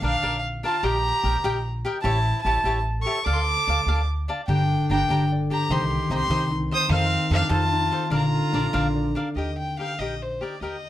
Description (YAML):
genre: mexican folk, mariachi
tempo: 98 BPM (dotted quarters)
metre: 6/8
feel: rubato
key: Bb major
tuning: A4 = 440 Hz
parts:
  - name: warm violin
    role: melody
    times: 0.0-10.9 s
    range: C5 to Eb6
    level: -26 LUFS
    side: left 1 dB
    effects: plate reverb
  - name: warm trumpet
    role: second line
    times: 0.0-9.1 s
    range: C4 to C5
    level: -32 LUFS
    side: right 6 dB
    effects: none
  - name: cavaquinho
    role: accompaniment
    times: 0.0-10.8 s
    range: D4 to Bb5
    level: -30 LUFS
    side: left 2 dB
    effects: none
  - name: concert harp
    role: arpeggios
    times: 0.0-1.6, 4.5-10.9 s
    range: D3 to D5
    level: -26 LUFS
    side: left 1 dB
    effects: none
  - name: upright bass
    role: bass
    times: 0.0-10.9 s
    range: G1 to F2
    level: -26 LUFS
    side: right 1 dB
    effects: none
room: moderate studio reverb, RT60 0.6 s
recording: none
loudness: -21 LUFS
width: side -13 dB against mid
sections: 0.0-9.4 A section; 9.4-10.9 B section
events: none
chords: 0.0 Bb; 0.8 Eb/Bb; 2.0 A7; 3.3 Dm; 4.5 Gm; 5.7 Cm7; 6.9 F7; 8.1 Bb; 9.4 Eb